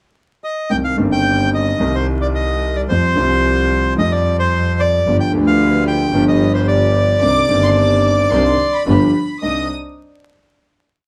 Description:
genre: tango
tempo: 110 BPM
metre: 4/4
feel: rubato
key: C harmonic minor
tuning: A4 = 440 Hz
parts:
  - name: bandoneon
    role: melody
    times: 0.4-9.7 s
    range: C5 to G5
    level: -20 LUFS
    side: equal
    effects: none
  - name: warm concert grand piano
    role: accompaniment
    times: 0.7-9.7 s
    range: G1 to G4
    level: -20 LUFS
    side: equal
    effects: none
  - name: clear double bass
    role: bass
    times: 0.7-9.7 s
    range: G1 to F2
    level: -21 LUFS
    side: equal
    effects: none
  - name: dark chamber string section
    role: stabs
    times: 5.1-9.7 s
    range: D4 to C5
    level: -31 LUFS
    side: equal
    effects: none
  - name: warm symphonic violin section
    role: second line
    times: 7.2-9.7 s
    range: B5 to Eb6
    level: -25 LUFS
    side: equal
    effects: none
room: moderate small room reverb, RT60 0.5 s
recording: band playing live in one room, vinyl crackle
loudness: -16 LUFS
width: mono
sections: 0.0-0.7 pickup bar; 0.7-9.4 A section; 9.4-11.1 final chord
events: none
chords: 0.0 N.C.; 0.7 Cm; 2.9 Fsus2; 5.1 G7; 7.2 Cmadd9; 8.9 G7; 9.4 Cmadd9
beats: 0.16 | 0.70 1.25 1.79 2.34 | 2.88 3.43 3.98 4.52 | 5.06 5.60 6.14 6.68 | 7.22 7.76 8.31 8.87 | 9.42

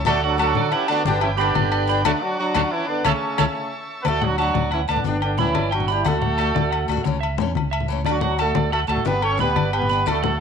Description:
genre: highlife guitar band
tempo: 120 BPM (dotted quarters)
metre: 12/8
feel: straight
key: D major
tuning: A4 = 445 Hz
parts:
  - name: combo organ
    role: sustained chords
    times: 0.0-4.1 s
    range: E5 to D6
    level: -33 LUFS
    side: right 2 dB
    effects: none
  - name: fingered electric bass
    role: bass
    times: 0.0-10.4 s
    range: G1 to D3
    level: -25 LUFS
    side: right 1 dB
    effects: none
  - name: warm horn section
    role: melody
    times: 0.1-10.4 s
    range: C#3 to C#5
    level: -23 LUFS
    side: right 1 dB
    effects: none
  - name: breathy trumpet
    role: second line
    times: 0.1-3.4 s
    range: F#4 to D5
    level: -28 LUFS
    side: right 12 dB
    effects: none
  - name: picked steel-string acoustic guitar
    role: accompaniment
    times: 0.1-10.2 s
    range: E3 to G4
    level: -31 LUFS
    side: left 10 dB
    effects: none
  - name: electric guitar at the edge of break-up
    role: arpeggios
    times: 0.1-10.4 s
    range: A4 to B5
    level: -27 LUFS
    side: right 10 dB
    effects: slapback echo
  - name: agogo bells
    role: percussion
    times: 0.1-10.2 s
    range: none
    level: -28 LUFS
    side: left 8 dB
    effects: none
  - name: congas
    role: percussion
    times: 0.1-10.3 s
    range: none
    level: -26 LUFS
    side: left 7 dB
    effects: none
room: moderate echo chamber reverb, RT60 1.6 s, small room ambience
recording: 1960s-style stereo with parts hard left and right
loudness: -18 LUFS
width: side -6 dB against mid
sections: 0.0-4.1 A section; 4.1-10.4 B section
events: band accent 2.1-4.1; drum fill 3.4-4.1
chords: 0.1 D; 1.1 G; 2.1 D; 3.1 A/C#; 4.1 D; 5.1 G; 6.1 D; 7.1 A/C#; 8.1 D; 9.1 G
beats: | 0.06 0.56 1.06 1.56 | 2.06 2.56 3.06 3.56 | 4.06 4.56 5.06 5.56 | 6.06 6.56 7.06 7.56 | 8.06 8.56 9.07 9.57 | 10.07

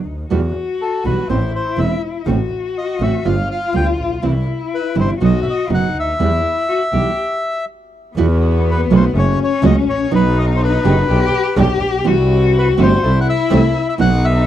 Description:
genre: tango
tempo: 123 BPM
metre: 4/4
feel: rubato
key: E harmonic minor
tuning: A4 = 440 Hz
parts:
  - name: warm cello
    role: second line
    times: 0.0-14.5 s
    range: B3 to G4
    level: -20 LUFS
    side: left 6 dB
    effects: none
  - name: clear double bass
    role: bass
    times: 0.1-14.5 s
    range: E1 to E2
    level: -17 LUFS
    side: equal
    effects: none
  - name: nylon-string guitar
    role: accompaniment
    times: 0.3-14.1 s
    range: B2 to G4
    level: -17 LUFS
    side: right 6 dB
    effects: none
  - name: bandoneon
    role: melody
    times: 0.8-14.5 s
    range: A4 to G5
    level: -20 LUFS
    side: left 2 dB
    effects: none
  - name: dark chamber string section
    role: stabs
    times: 8.2-14.5 s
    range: D#3 to A4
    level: -25 LUFS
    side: right 1 dB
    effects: none
room: little or no reverb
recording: dry, close 1970s-style studio recording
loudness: -14 LUFS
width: side -11 dB against mid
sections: 0.0-8.2 A section; 8.2-14.5 A section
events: stop 7.2-8.2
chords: 0.3 Emadd9; 1.3 Amadd9; 2.3 F#dim/A; 3.3 G7; 4.2 C; 5.2 B; 6.2 Em; 8.2 Esus2; 9.1 F#m; 10.1 B; 11.1 G/B; 12.1 C; 13.0 Am/C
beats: | 0.31 0.80 1.30 1.79 | 2.28 2.77 3.26 3.75 | 4.24 4.73 5.21 5.70 | 6.19 6.68 7.17 7.67 | 8.16 8.65 9.14 9.63 | 10.12 10.60 11.09 11.57 | 12.06 12.54 13.03 13.51 | 14.00

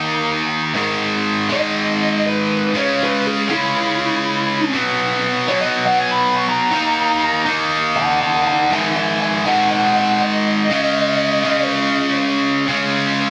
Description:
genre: rock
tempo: 121 BPM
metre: 4/4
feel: straight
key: unclear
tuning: A4 = 441 Hz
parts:
  - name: distorted electric guitar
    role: riff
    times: 0.0-13.3 s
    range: G#2 to D#4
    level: -19 LUFS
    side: equal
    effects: overdrive
  - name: fuzz lead guitar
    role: melody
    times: 1.5-11.7 s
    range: E4 to C#6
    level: -22 LUFS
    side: equal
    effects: distortion, plate reverb, digital delay
room: wet studio reverb, RT60 0.6 s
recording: dense, heavily limited modern master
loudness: -17 LUFS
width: mono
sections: 0.0-12.7 A section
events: lead electric guitar solo 0.0-12.7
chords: 0.0 D#5; 0.8 G#m; 2.7 C#m; 4.7 B5; 6.7 D#m; 8.7 G#5; 10.7 C#5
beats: 0.26 | 0.75 1.25 1.75 2.25 | 2.75 3.25 3.75 4.24 | 4.74 5.24 5.74 6.23 | 6.73 7.23 7.72 8.22 | 8.72 9.21 9.71 10.20 | 10.70 11.19 11.69 12.19 | 12.68 13.18

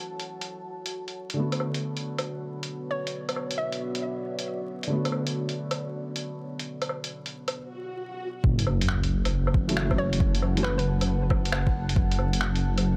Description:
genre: future garage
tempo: 136 BPM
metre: 4/4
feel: swing 66% on 16ths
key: F# minor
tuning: A4 = 439 Hz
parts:
  - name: felt-muted upright piano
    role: accompaniment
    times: 0.0-10.8 s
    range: D3 to F#4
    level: -35 LUFS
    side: equal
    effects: sidechain pumping, tape echo
  - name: deep dark ambient pad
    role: sustained chords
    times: 0.0-13.0 s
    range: B3 to A5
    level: -40 LUFS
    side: equal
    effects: chorus, built-in reverb, sidechain pumping
  - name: lo-fi sampler-style drum kit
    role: drums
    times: 0.2-12.8 s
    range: finger snaps, hi-hat, woodblock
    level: -34 LUFS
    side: equal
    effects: none
  - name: hollow square pluck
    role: melody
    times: 2.9-4.0, 10.0-10.8 s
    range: B4 to E5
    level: -37 LUFS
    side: equal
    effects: chorus, tape echo
  - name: swell and sub drop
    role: sound effects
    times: 7.8-10.2 s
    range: none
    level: -35 LUFS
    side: equal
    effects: none
  - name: dark detuned saw bass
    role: bass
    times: 8.4-13.0 s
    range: F#1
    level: -28 LUFS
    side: equal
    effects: sidechain pumping
  - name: electronic kick drum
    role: drums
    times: 8.4-12.1 s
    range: none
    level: -28 LUFS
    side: equal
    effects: overdrive
room: light reverb, digital ambience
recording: vinyl crackle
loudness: -28 LUFS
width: mono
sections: 0.0-8.4 A section; 8.4-13.0 B section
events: filter sweep on felt piano 0.0-8.4; swell 7.8-8.4; impact 8.4-10.2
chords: 0.0 F#m7; 1.4 Bm7; 8.4 F#m7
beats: 0.05 0.49 0.94 | 1.38 1.82 2.26 2.70 | 3.14 3.58 4.03 4.47 | 4.91 5.35 5.79 6.23 | 6.67 7.11 7.55 8.00 | 8.44 8.88 9.32 9.76 | 10.20 10.64 11.08 11.53 | 11.97 12.41 12.85

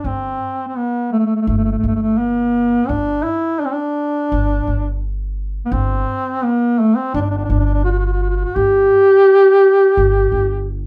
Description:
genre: Arabic maqam ensemble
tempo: 85 BPM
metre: 4/4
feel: straight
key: G maqam rast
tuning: A4 = 440 Hz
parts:
  - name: warm duduk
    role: melody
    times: 0.0-10.7 s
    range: A3 to G4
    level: -17 LUFS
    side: equal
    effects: none
  - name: upright bass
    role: bass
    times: 0.0-10.9 s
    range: G1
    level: -22 LUFS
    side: equal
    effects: none
room: wet small room reverb, RT60 0.5 s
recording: heard from further back in the room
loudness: -16 LUFS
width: mono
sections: 0.0-10.9 A section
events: none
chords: none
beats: | 0.04 0.75 1.46 2.17 | 2.88 3.59 4.30 5.01 | 5.72 6.43 7.14 7.85 | 8.56 9.27 9.97 10.68

